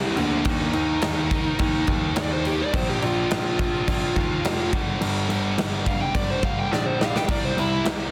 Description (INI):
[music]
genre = hard rock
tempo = 106 BPM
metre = 4/4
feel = straight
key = G minor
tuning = A4 = 441 Hz
[part]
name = high-gain lead guitar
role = melody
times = 0.0-7.9 s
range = Bb3 to G5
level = -29 LUFS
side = equal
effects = distortion
[part]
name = scooped high-gain guitar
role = riff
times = 0.0-8.1 s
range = G2 to Eb4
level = -32 LUFS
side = equal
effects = distortion
[part]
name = warm grand piano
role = bass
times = 0.0-8.1 s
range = F1 to Eb2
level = -29 LUFS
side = equal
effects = none
[part]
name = big rock drum kit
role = drums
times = 0.2-8.0 s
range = crash cymbal, kick drum, snare drum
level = -28 LUFS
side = equal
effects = soft clipping on snare
[sound]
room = small room ambience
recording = dense, heavily limited modern master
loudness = -23 LUFS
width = mono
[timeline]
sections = 0.0-8.1 A section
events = lead electric guitar solo 0.0-8.1; drum fill 6.7-7.3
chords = 0.5 Eb5; 2.7 Bb5; 4.7 Gm; 7.3 C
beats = | 0.47 1.03 1.60 2.17 | 2.74 3.31 3.88 4.44 | 5.01 5.58 6.15 6.71 | 7.28 7.85